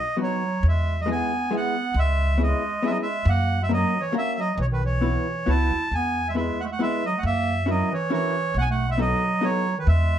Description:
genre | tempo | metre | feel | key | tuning
musette waltz | 136 BPM | 3/4 | swing 54% on 8ths | unclear | A4 = 440 Hz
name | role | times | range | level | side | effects
accordion | melody | 0.0-10.2 s | B4 to A5 | -26 LUFS | right 1 dB | none
clear clarinet | second line | 0.2-10.2 s | D#3 to E4 | -28 LUFS | right 4 dB | none
vintage hollow-body jazz guitar | accompaniment | 0.2-9.7 s | F#3 to B4 | -26 LUFS | left 3 dB | none
upright bass | bass | 0.6-10.2 s | B1 to F#2 | -23 LUFS | equal | none
room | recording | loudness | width
light reverb | none | -21 LUFS | side -10 dB against mid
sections
0.0-10.2 A section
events
none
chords
0.0 B; 0.6 E; 2.0 C#m7; 3.3 F#; 4.6 Bsus4; 5.9 E; 7.2 F#7; 8.5 B7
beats
0.18 | 0.63 1.07 1.51 | 1.95 2.39 2.83 | 3.26 3.70 4.13 | 4.58 5.02 5.47 | 5.91 6.36 6.80 | 7.24 7.68 8.11 | 8.55 8.99 9.43 | 9.86

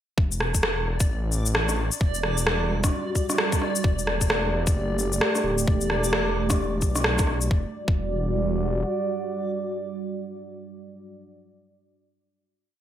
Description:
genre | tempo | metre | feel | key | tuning
future garage | 131 BPM | 4/4 | swing 61% on 16ths | E minor | A4 = 440 Hz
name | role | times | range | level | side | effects
swelling detuned saw bass | bass | 0.2-8.8 s | D1 to B1 | -27 LUFS | equal | tube saturation, sidechain pumping
electronic kick drum | drums | 0.2-8.0 s | none | -24 LUFS | equal | overdrive
backwards swelling texture | texture | 0.9-7.5 s | D5 | -37 LUFS | right 2 dB | built-in reverb
electronic shaker and rim click | drums | 0.3-7.5 s | none | -25 LUFS | equal | overdrive, gated reverb
dark analog pad | sustained chords | 2.6-11.1 s | G3 to D5 | -28 LUFS | right 2 dB | chorus, sidechain pumping
room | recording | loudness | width
moderate lush hall reverb, RT60 1.6 s | bright 1980s-style digital production | -22 LUFS | side -10 dB against mid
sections
0.2-7.5 groove; 7.5-11.2 final chord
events
none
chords
0.2 Em9; 3.8 Dsus4; 7.5 Em9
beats
| 0.18 0.64 1.09 1.55 | 2.01 2.47 2.93 3.38 | 3.84 4.30 4.76 5.22 | 5.67 6.13 6.59 7.05 | 7.51 7.96 8.42 8.88 | 9.34 9.80 10.25 10.71

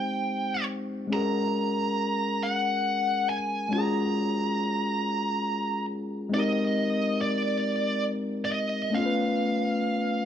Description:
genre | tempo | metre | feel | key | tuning
R&B | 46 BPM (dotted quarters) | 6/8 | straight | F# major | A4 = 440 Hz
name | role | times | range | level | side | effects
high-gain lead guitar | melody | 0.0-10.3 s | D5 to A#5 | -28 LUFS | right 1 dB | distortion, slapback echo
overdriven tine electric piano | accompaniment | 0.0-10.3 s | G#3 to B#4 | -27 LUFS | left 2 dB | none
room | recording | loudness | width
light reverb | small room ambience | -25 LUFS | side -9 dB against mid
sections
0.0-10.3 A section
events
none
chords
0.0 G#maj7; 1.1 F#maj9; 6.3 G#maj9; 8.9 C#aug7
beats
| 1.11 2.41 | 3.72 5.02 | 6.33 7.63 | 8.93 10.24

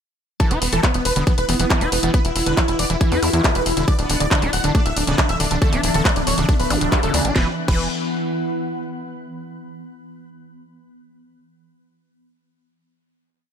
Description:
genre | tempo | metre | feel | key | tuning
psychedelic trance | 138 BPM | 4/4 | straight | unclear | A4 = 443 Hz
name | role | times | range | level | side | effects
dense compressed supersaw | melody | 0.4-7.8 s | B3 to F#5 | -24 LUFS | equal | phaser, sidechain pumping, ping-pong delay
overdriven acid bass | riff | 0.4-7.9 s | C#3 to E4 | -26 LUFS | right 1 dB | distortion, auto-pan, sidechain pumping, ping-pong delay
drum and bass drum kit | drums | 0.4-7.8 s | crash cymbal, handclaps, hi-hat, snare drum | -23 LUFS | left 1 dB | none
electronic kick drum | drums | 0.4-7.8 s | none | -18 LUFS | equal | none
warbly tape-like pad | texture | 1.1-9.1 s | D4 to F#5 | -28 LUFS | equal | chorus, built-in reverb, phaser, sidechain pumping
tight sequencer bass | bass | 0.5-7.9 s | D1 to E2 | -24 LUFS | equal | tube saturation
zap | sound effects | 3.2-3.3, 6.7-6.8 s | none | -28 LUFS | equal | none
swarming drone | sustained chords | 4.6-7.4 s | E3 to B3 | -29 LUFS | left 1 dB | built-in reverb, sidechain pumping
metallic wobble bass | second line | 4.0-5.9 s | E3 to D4 | -34 LUFS | right 2 dB | lush chorus, sidechain pumping, high-pass filter, ping-pong delay
room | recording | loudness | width
light reverb | none | -16 LUFS | side -8 dB against mid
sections
0.4-7.4 drop; 7.4-9.1 final chord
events
drop 0.4-7.4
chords
0.4 E5; 3.9 D5; 7.4 E5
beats
| 0.40 0.83 1.27 1.70 | 2.14 2.57 3.01 3.44 | 3.88 4.31 4.75 5.18 | 5.62 6.05 6.49 6.92 | 7.36 7.79 8.23 8.66

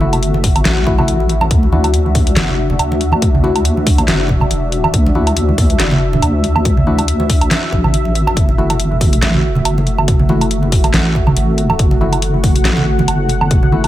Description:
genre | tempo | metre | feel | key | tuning
deep dubstep | 140 BPM | 4/4 | swing 55% on 16ths, half-time | F# minor | A4 = 440 Hz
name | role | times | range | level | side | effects
dark analog pad | sustained chords | 0.0-13.9 s | A3 to F#5 | -20 LUFS | equal | chorus
percussive organ stab | stabs | 0.0-13.9 s | A3 to F#4 | -24 LUFS | left 3 dB | chorus, dub echo
deep soft wobble bass | bass | 0.0-13.9 s | E1 to D2 | -16 LUFS | equal | chorus
congas | percussion | 0.0-13.9 s | none | -20 LUFS | right 2 dB | none
dubstep drum kit | drums | 0.1-13.9 s | handclaps, hi-hat, snare drum, woodblock | -18 LUFS | right 1 dB | none
electronic kick drum | drums | 0.4-13.6 s | none | -15 LUFS | equal | none
room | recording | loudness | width
little or no reverb | none | -11 LUFS | side -13 dB against mid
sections
0.0-13.9 A section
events
none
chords
0.0 F#m7; 1.5 Dadd9; 8.4 F#m7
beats
0.22 0.65 1.08 | 1.51 1.94 2.37 2.79 | 3.22 3.65 4.08 4.51 | 4.94 5.37 5.79 6.22 | 6.65 7.08 7.51 7.94 | 8.37 8.79 9.22 9.65 | 10.08 10.51 10.94 11.37 | 11.79 12.22 12.65 13.08 | 13.51

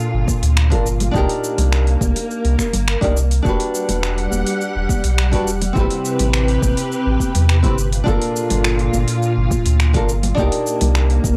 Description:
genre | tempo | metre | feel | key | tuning
sunset chillout | 104 BPM | 4/4 | straight | unclear | A4 = 440 Hz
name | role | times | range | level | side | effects
nylon-string guitar | accompaniment | 0.0-11.4 s | C4 to B4 | -25 LUFS | equal | analog delay
soft string machine | sustained chords | 0.0-11.4 s | Bb2 to F#5 | -25 LUFS | equal | ensemble chorus
deep house drum kit | drums | 0.0-11.4 s | cabasa, finger snaps, hi-hat | -27 LUFS | equal | overdrive
warm sub bass | bass | 0.1-11.4 s | E1 to E2 | -19 LUFS | equal | none
electronic kick drum | drums | 0.3-11.4 s | none | -24 LUFS | equal | overdrive
congas | percussion | 0.3-11.4 s | none | -30 LUFS | equal | none
room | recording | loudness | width
digital ambience | dry, gritty hardware recording, transformer saturation | -18 LUFS | mono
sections
0.0-11.4 A section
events
none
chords
0.0 Gm9; 1.1 Cm9; 3.5 Em9; 5.8 Am9; 7.8 Gm9; 10.4 Cm9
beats
0.57 | 1.15 1.72 2.30 2.88 | 3.45 4.03 4.61 5.18 | 5.76 6.34 6.91 7.49 | 8.07 8.64 9.22 9.80 | 10.38 10.95

